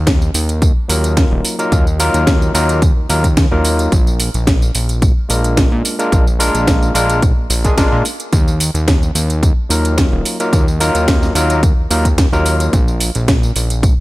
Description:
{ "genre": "nu-disco, nu disco", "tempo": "109 BPM", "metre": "4/4", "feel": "straight", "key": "unclear", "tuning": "A4 = 440 Hz", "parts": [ { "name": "fat analog bass", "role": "bass", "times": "0.0-13.9 s", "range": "Eb1 to Bb2", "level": "-16 LUFS", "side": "equal", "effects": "none" }, { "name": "electronic kick drum", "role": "drums", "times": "0.1-13.9 s", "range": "none", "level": "-14 LUFS", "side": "equal", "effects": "small room ambience" }, { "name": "house drum kit", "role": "drums", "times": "0.1-13.9 s", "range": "hi-hat, snare drum, tambourine", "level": "-19 LUFS", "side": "right 1 dB", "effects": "small room ambience" }, { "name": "overdriven tine electric piano", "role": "accompaniment", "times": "0.9-12.7 s", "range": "Gb3 to Bb4", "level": "-18 LUFS", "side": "equal", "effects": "dub echo" } ], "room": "little or no reverb", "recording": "none", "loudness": "-12 LUFS", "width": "side -19 dB against mid", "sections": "0.0-14.0 A section", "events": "none", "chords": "0.0 Ebmadd9; 3.9 Bb7; 8.1 Ebmadd9; 12.7 N.C." }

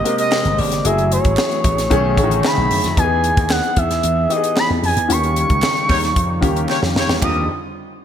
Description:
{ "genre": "polished 1980s jazz-funk pop", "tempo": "113 BPM", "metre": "4/4", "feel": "straight", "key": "unclear", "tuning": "A4 = 440 Hz", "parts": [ { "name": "expressive portamento lead", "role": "melody", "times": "0.0-7.5 s", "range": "Db5 to Eb6", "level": "-20 LUFS", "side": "equal", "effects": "chorus" }, { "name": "warm grand piano", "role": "accompaniment", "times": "0.0-7.5 s", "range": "D3 to Bb4", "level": "-22 LUFS", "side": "left 2 dB", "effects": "lush chorus" }, { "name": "hollow soft pad", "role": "sustained chords", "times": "0.0-7.5 s", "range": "C3 to Ab4", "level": "-28 LUFS", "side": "equal", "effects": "chorus" }, { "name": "tight funk drum kit", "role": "drums", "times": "0.1-7.3 s", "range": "hi-hat, kick drum, ride cymbal, snare drum, toms", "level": "-21 LUFS", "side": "equal", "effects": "gated reverb" }, { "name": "group handclap", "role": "percussion", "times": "0.3-7.5 s", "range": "none", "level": "-33 LUFS", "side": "right 5 dB", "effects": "none" }, { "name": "slap bass with an envelope filter", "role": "bass", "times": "0.5-7.5 s", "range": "Gb1 to F#2", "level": "-20 LUFS", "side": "equal", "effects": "none" }, { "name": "warm horn section", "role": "second line", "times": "5.9-7.4 s", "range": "G3 to Db5", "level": "-25 LUFS", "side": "left 2 dB", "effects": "none" } ], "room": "light reverb, small room ambience", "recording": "bright 1980s-style digital production", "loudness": "-14 LUFS", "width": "side -9 dB against mid", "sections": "0.0-7.2 A section", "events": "band accent 5.1-7.2; drum fill 6.7-7.2", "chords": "0.0 Abmaj9; 0.8 Gbm9; 1.9 B13; 3.0 Emaj7; 5.1 Eb7; 7.2 Ebmaj9" }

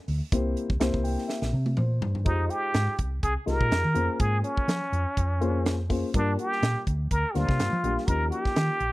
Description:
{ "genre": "electric jazz fusion", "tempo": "124 BPM", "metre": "4/4", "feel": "swing 55% on 16ths", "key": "F minor", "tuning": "A4 = 440 Hz", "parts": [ { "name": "hollow-body short-scale fingered electric bass", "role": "bass", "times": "0.1-8.9 s", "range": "Bb1 to F3", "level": "-27 LUFS", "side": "equal", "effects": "none" }, { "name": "crisp fusion drum kit", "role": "drums", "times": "0.1-8.9 s", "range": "hi-hat, kick drum, snare drum, toms", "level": "-29 LUFS", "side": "equal", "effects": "none" }, { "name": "dark baby grand piano", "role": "accompaniment", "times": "0.3-8.8 s", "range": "F3 to G5", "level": "-31 LUFS", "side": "left 3 dB", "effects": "none" }, { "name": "trumpet with plunger mute", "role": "melody", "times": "2.3-8.9 s", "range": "Db4 to Bb4", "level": "-28 LUFS", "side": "equal", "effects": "none" } ], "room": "studio ambience", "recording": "dry, close 1970s-style studio recording", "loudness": "-24 LUFS", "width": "side -18 dB against mid", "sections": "0.0-2.3 A section; 2.3-8.9 B section", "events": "grand piano fill 0.8-2.3; drum fill 1.3-2.3", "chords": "0.3 C7; 2.3 Fm9; 4.0 Bbm9/F; 6.1 Gm7; 8.1 Eb9" }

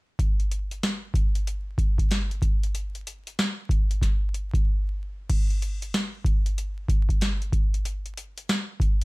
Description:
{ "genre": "hip hop", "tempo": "94 BPM", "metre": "4/4", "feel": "swing 62% on 16ths", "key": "none", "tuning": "none", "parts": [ { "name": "booming analog drum machine", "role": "drums", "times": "0.2-9.0 s", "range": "crash cymbal, hi-hat, kick drum, snare drum", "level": "-23 LUFS", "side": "equal", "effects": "none" } ], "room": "light reverb", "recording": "vinyl crackle", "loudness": "-23 LUFS", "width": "side -24 dB against mid", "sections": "0.2-5.3 A section; 5.3-9.0 B section", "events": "break 4.7-5.3", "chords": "none" }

